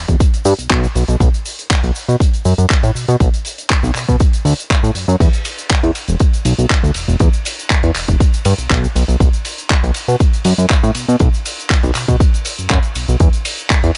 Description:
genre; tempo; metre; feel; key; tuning
nu-disco, nu disco; 120 BPM; 4/4; straight; unclear; A4 = 440 Hz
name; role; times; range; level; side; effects
fat analog bass; bass; 0.0-13.9 s; E1 to B2; -16 LUFS; equal; tube saturation
electronic kick drum; drums; 0.1-13.8 s; none; -16 LUFS; equal; none
tight funk drum kit; drums; 0.1-14.0 s; crash cymbal, handclaps, hi-hat, ride cymbal, shaker; -23 LUFS; equal; none
room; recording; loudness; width
little or no reverb; nothing above 10.6 kHz; -15 LUFS; mono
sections
0.0-14.0 A section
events
none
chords
none

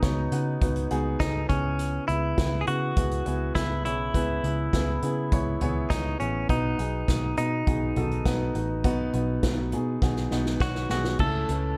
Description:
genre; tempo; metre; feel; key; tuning
piano-driven pop; 102 BPM; 4/4; straight; unclear; A4 = 441 Hz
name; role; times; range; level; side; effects
direct-recorded clean electric guitar; melody; 0.0-11.8 s; C#4 to A4; -34 LUFS; equal; none
warm concert grand piano; accompaniment; 0.0-11.8 s; B2 to C#5; -32 LUFS; equal; none
vintage muted picked electric bass; bass; 0.0-11.7 s; A1 to C#3; -32 LUFS; equal; none
unplugged drum kit; drums; 0.0-11.6 s; crash cymbal, hi-hat, kick drum, snare drum, toms; -31 LUFS; equal; none
room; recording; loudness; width
light reverb, small room ambience; none; -26 LUFS; mono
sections
0.0-11.2 A section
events
drum fill 10.0-11.2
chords
0.0 B; 1.5 E; 6.5 B; 11.2 A

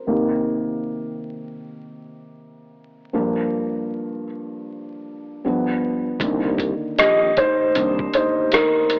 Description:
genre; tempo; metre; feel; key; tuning
lo-fi hip hop; 78 BPM; 4/4; swing 65% on 16ths; C minor; A4 = 440 Hz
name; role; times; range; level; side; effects
felt-muted upright piano; accompaniment; 0.0-9.0 s; G2 to Eb5; -23 LUFS; equal; cassette tape, low-pass filter
sustaining fretless electric bass; bass; 6.2-8.1 s; Bb1 to C2; -28 LUFS; equal; transformer saturation, subtle chorus
lo-fi sampler-style drum kit; drums; 6.2-9.0 s; hi-hat, kick drum, rim click; -24 LUFS; equal; none
room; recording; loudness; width
moderate spring reverb, RT60 2.4 s; worn, warbling old tape, cassette tape, vinyl crackle, warbly pitch drift, AM radio sound; -21 LUFS; mono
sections
0.0-6.2 A section; 6.2-9.0 B section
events
felt piano solo 0.0-6.2, 6.2-9.0; filter sweep on felt piano 0.0-6.2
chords
0.0 Cm7; 3.1 Gm7; 5.4 G7; 6.2 Cm7

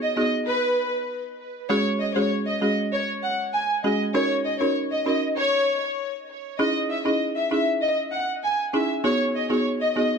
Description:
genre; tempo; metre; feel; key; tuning
dancehall; 98 BPM; 4/4; straight; G# minor; A4 = 440 Hz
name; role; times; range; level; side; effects
warm studio violin section; melody; 0.0-10.1 s; B4 to G#5; -24 LUFS; left 1 dB; ping-pong delay
folk marimba with medium mallets; accompaniment; 0.2-10.1 s; G#3 to A#4; -25 LUFS; right 1 dB; none
room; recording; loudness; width
light reverb, studio reverb; dark, warm production; -21 LUFS; side -6 dB against mid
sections
0.0-10.2 A section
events
none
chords
0.0 G#m7; 1.7 F#sus2; 4.1 D#m7; 6.6 C#madd9; 9.0 G#m7

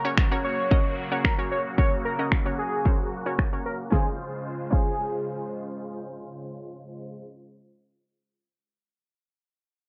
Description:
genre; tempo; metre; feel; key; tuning
dance-pop; 112 BPM; 4/4; straight; Db major; A4 = 440 Hz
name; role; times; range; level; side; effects
octave-doubled lead; melody; 0.0-5.5 s; Ab4 to Db5; -33 LUFS; equal; chorus, sidechain pumping, delay
analog pluck; accompaniment; 0.0-8.1 s; Db4 to Eb5; -34 LUFS; equal; chorus, sidechain pumping
filtered supersaw swell; sustained chords; 0.0-7.2 s; Db3 to C5; -37 LUFS; equal; subtle chorus, sidechain pumping
pop drum kit; drums; 0.2-4.9 s; crash cymbal, finger snaps, kick drum, snare drum; -25 LUFS; equal; none
room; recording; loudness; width
light reverb, digital ambience; bright 1980s-style digital production, low-pass filter; -26 LUFS; mono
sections
0.0-3.9 A section; 3.9-8.2 B section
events
filter sweep 0.0-3.9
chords
0.0 Gb; 3.9 Dbmaj7

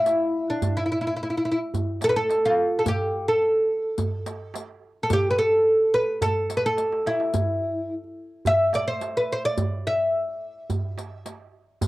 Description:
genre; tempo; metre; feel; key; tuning
Arabic maqam ensemble; 107 BPM; 4/4; straight; E maqam kurd; A4 = 441 Hz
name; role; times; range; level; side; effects
oud; melody; 0.0-11.3 s; D4 to E5; -22 LUFS; equal; cassette tape
darbuka; percussion; 0.1-11.9 s; none; -29 LUFS; right 2 dB; none
riq; percussion; 0.1-11.9 s; none; -34 LUFS; left 6 dB; none
room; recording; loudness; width
moderate small room reverb, RT60 0.5 s; home recording on cassette; -21 LUFS; side -18 dB against mid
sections
0.0-11.9 A section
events
drum fill 6.8-7.3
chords
none

